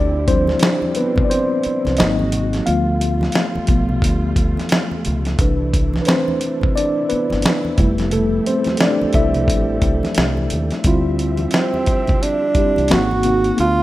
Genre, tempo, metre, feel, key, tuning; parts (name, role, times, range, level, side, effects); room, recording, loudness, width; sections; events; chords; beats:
R&B, neo-soul; 88 BPM; 4/4; swing 60% on 16ths; D dorian; A4 = 440 Hz
mellow tine electric piano; accompaniment; 0.0-13.8 s; E3 to F5; -19 LUFS; left 1 dB; medium stereo tremolo
dark studio string section; sustained chords; 0.0-13.8 s; C3 to E5; -29 LUFS; right 2 dB
deep dub fingered electric bass; bass; 0.0-13.8 s; F1 to Eb2; -21 LUFS; equal
dusty soul sampler-style drum kit; drums; 0.3-13.8 s; hi-hat, kick drum, snare drum; -19 LUFS; equal
congas; percussion; 0.5-13.4 s; -30 LUFS; right 1 dB
breathy tenor saxophone; melody; 11.6-13.8 s; C4 to F#4; -18 LUFS; right 3 dB
light reverb, small room ambience; rough home demo mix; -15 LUFS; side -16 dB against mid
0.0-10.8 A section; 10.8-13.8 B section
tine electric piano solo 0.0-10.8
0.0 Dm11; 2.0 G#9; 2.7 G9; 5.4 Cmaj9; 7.8 Fmaj9; 10.8 Dm11; 12.9 G#9
0.62 1.30 1.98 | 2.67 3.35 4.03 4.71 | 5.39 6.07 6.76 7.44 | 8.12 8.80 9.48 10.16 | 10.85 11.53 12.21 12.89 | 13.57